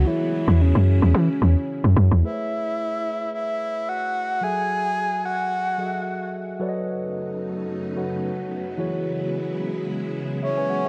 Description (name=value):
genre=amapiano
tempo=110 BPM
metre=4/4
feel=swing 55% on 16ths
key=E major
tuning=A4 = 440 Hz
part: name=breathy flute-like synth lead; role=melody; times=0.0-6.3, 10.4-10.9 s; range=C#4 to G#5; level=-28 LUFS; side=equal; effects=chorus
part: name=mellow tine electric piano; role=accompaniment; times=0.0-10.9 s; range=E3 to G#5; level=-32 LUFS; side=equal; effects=phaser
part: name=phased string machine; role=sustained chords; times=0.0-2.2, 6.6-10.9 s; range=F#2 to E4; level=-34 LUFS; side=equal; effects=ensemble chorus, phaser
part: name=woody log drum bass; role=bass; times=0.0-2.2 s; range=E2 to E3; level=-18 LUFS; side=equal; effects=none
room=light reverb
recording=dark, warm production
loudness=-23 LUFS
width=mono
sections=0.0-2.2 A section; 2.2-10.9 B section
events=drop 0.0-2.2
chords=0.1 E69; 2.2 Amaj9; 4.4 F#m9; 6.6 B9/F#; 8.8 E69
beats=| 0.06 0.60 1.15 1.69 | 2.24 2.78 3.33 3.87 | 4.42 4.96 5.51 6.05 | 6.60 7.15 7.69 8.24 | 8.78 9.33 9.87 10.42